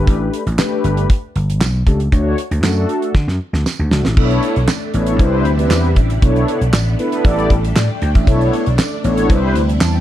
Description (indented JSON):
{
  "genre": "early-eighties boogie funk",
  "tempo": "117 BPM",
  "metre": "4/4",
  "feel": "straight",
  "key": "B phrygian from 4.2 s",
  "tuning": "A4 = 440 Hz",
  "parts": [
    { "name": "mellow synth brass", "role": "accompaniment", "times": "0.0-10.0 s", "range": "A3 to A5", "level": "-19 LUFS", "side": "left 1 dB", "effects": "chorus, plate reverb" },
    { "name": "vintage slap bass", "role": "bass", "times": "0.0-10.0 s", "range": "G1 to D3", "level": "-16 LUFS", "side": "equal", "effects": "none" },
    { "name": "damped 70s drum kit", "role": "drums", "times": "0.1-9.9 s", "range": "crash cymbal, handclaps, hi-hat, kick drum, snare drum", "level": "-16 LUFS", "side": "equal", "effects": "none" },
    { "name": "tambourine", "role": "percussion", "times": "0.6-9.9 s", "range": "none", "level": "-30 LUFS", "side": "right 11 dB", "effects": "none" },
    { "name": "string machine, full ensemble", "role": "sustained chords", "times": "4.2-10.0 s", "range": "C3 to E4", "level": "-24 LUFS", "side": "equal", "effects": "phaser, ensemble chorus, plate reverb" }
  ],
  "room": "light reverb, small room ambience",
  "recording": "dark, warm production",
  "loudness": "-13 LUFS",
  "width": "side -12 dB against mid",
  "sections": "0.0-4.2 A section; 4.2-10.0 B section",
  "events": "drum fill 3.1-4.2",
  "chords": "0.0 A9sus4; 2.1 Dmaj7; 4.2 Bm11; 5.2 Cmaj7; 6.2 Bm11; 7.2 A9sus4; 8.3 Bm11; 9.3 Cmaj7",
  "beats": "| 0.07 0.58 1.10 1.61 | 2.12 2.63 3.15 3.66 | 4.17 4.68 5.20 5.71 | 6.22 6.74 7.25 7.76 | 8.28 8.79 9.30 9.81"
}